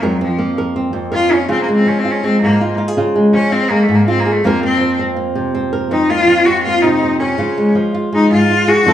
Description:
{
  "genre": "flamenco",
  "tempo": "163 BPM",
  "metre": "4/4",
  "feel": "straight",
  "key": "unclear",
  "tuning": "A4 = 441 Hz",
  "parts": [
    { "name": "flamenco guitar", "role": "melody", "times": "0.0-8.9 s", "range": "F2 to Bb4", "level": "-14 LUFS", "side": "equal", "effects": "none" },
    { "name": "bright cello", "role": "second line", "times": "0.0-8.9 s", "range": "F3 to Gb4", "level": "-15 LUFS", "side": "left 1 dB", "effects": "none" }
  ],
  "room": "wet large studio reverb, RT60 0.8 s",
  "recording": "band playing live in one room",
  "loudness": "-12 LUFS",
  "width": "side -11 dB against mid",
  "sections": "0.0-8.9 A section",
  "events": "cello solo 0.0-8.9",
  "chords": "0.0 Fsus4; 1.5 Db; 4.4 Fsus4; 7.4 Db"
}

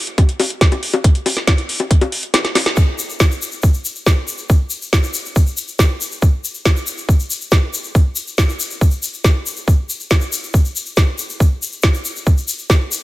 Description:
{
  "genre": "trance",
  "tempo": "139 BPM",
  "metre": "4/4",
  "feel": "straight",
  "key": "none",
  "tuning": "none",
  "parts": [
    { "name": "drum and bass drum kit", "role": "drums", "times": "0.1-12.8 s", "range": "bongos, hi-hat, snare drum", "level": "-18 LUFS", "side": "equal", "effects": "none" },
    { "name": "electronic kick drum", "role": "drums", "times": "0.2-12.8 s", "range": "none", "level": "-13 LUFS", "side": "equal", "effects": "none" },
    { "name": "egg shaker", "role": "percussion", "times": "2.8-13.0 s", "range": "none", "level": "-24 LUFS", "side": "left 4 dB", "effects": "none" }
  ],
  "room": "little or no reverb",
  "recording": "none",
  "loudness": "-14 LUFS",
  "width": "side -17 dB against mid",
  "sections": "0.0-2.8 A section; 2.8-13.0 B section",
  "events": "kick drops out 2.3-2.8; drum fill 2.4-2.8; band accent 2.7",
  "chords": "none"
}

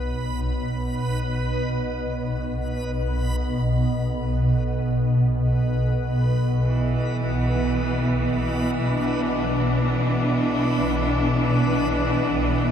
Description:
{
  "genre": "ambient",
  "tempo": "free time",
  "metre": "none",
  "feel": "none",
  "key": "B minor",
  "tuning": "A4 = 439 Hz",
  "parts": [
    { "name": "swarming drone", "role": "drone", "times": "0.0-12.7 s", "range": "B1 to B2", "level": "-22 LUFS", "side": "equal", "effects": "built-in reverb" },
    { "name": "backwards swelling texture", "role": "texture", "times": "0.0-12.7 s", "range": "B4", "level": "-33 LUFS", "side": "left 2 dB", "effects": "built-in reverb" },
    { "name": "rich studio cello section", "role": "sustained chords", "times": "6.6-12.7 s", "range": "E3 to D4", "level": "-24 LUFS", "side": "equal", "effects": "none" }
  ],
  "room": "moderate plate reverb, RT60 3.1 s",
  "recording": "none",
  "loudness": "-20 LUFS",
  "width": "side -8 dB against mid",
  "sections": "0.0-12.7 A section",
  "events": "fade-in on synth texture 0.0-12.7",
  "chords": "0.0 Bm"
}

